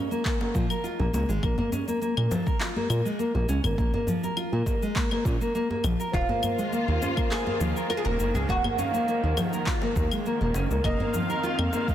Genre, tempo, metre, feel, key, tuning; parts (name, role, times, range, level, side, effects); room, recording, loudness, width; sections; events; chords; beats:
organic downtempo; 102 BPM; 4/4; straight; Bb minor; A4 = 440 Hz
oud; melody; 0.0-1.1, 6.1-11.9 s; Db4 to Bb4; -32 LUFS; right 3 dB; tape echo
nylon-string guitar; arpeggios; 0.0-11.9 s; F3 to Bb4; -28 LUFS; left 1 dB; tape echo
electronic cabasa, handclaps and claves; drums; 0.1-11.9 s; -35 LUFS; left 3 dB
electronic kick drum; drums; 0.3-11.9 s; -28 LUFS; equal
djembe; percussion; 0.4-11.9 s; -35 LUFS; left 1 dB
smooth gliding synth bass; bass; 0.5-11.7 s; Eb1 to Bb2; -27 LUFS; equal; sidechain pumping
warm symphonic string section; sustained chords; 6.1-11.9 s; Eb3 to F5; -33 LUFS; equal; sidechain pumping
quartz singing bowl; texture; 6.1-11.9 s; C5; -41 LUFS; left 6 dB
light reverb; dense, heavily limited modern master; -24 LUFS; side -11 dB against mid
0.0-11.9 A section
0.0 Bbm; 6.1 Eb7sus2; 10.8 F7(no3)
0.26 0.84 | 1.43 2.02 2.61 3.20 | 3.78 4.37 4.96 5.55 | 6.14 6.72 7.31 7.90 | 8.49 9.08 9.67 10.26 | 10.84 11.43